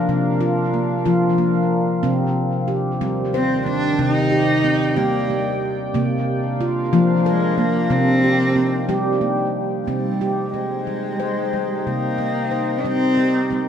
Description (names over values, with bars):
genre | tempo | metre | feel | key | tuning
world meditative, meditative tuned percussion | 61 BPM (dotted quarters) | 6/8 | straight | C minor | A4 = 438 Hz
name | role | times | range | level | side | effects
deep dark ambient pad | sustained chords | 0.0-13.7 s | Eb3 to G5 | -25 LUFS | equal | chorus, built-in reverb
handpan | arpeggios | 0.0-13.7 s | C3 to C5 | -20 LUFS | equal | diffuse ambient delay
dark cello | melody | 3.3-13.6 s | G3 to Eb4 | -21 LUFS | equal | none
room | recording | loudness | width
wet studio reverb, RT60 0.6 s | none | -17 LUFS | side -8 dB against mid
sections
0.0-9.9 A section; 9.9-13.7 B section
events
none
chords
0.0 Bb/C; 2.0 Cm; 6.0 Bb/C; 7.9 Cm